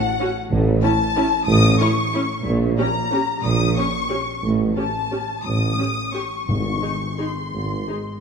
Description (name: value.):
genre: classical, orchestral ballroom waltz.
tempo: 161-204 BPM.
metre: 3/4.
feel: rubato.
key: unclear.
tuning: A4 = 439 Hz.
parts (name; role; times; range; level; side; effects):
warm symphonic violin section; melody; 0.0-8.2 s; F#5 to D#6; -27 LUFS; left 4 dB; none.
warm symphonic violin section; second line; 0.0-8.2 s; F#5 to D#6; -27 LUFS; left 4 dB; none.
warm symphonic viola section; accompaniment; 0.2-8.0 s; C#4 to G#4; -26 LUFS; equal; none.
dark studio double bass section; bass; 0.5-7.8 s; G#1 to A#1; -25 LUFS; right 2 dB; none.
warm symphonic cello section; bass; 0.5-7.8 s; G#2 to A#2; -26 LUFS; right 2 dB; none.
warm tuba; bass; 0.5-7.8 s; G#1 to A#1; -25 LUFS; right 2 dB; none.
timpani; percussion; 6.5-7.0 s; G#2; -27 LUFS; left 3 dB; none.
room: moderate scoring stage reverb, RT60 1.7 s.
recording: dark, warm production, lossy compression artefacts.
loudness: -18 LUFS.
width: side -6 dB against mid.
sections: 0.0-8.2 A section.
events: none.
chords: 0.0 F#5; 0.5 A; 2.5 D#7/A#; 4.4 A7; 6.5 G#.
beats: 0.20 | 0.51 0.83 1.16 | 1.48 1.80 2.14 | 2.46 2.78 3.12 | 3.45 3.77 4.11 | 4.43 4.77 5.11 | 5.45 5.78 6.14 | 6.48 6.83 7.20 | 7.54 7.89.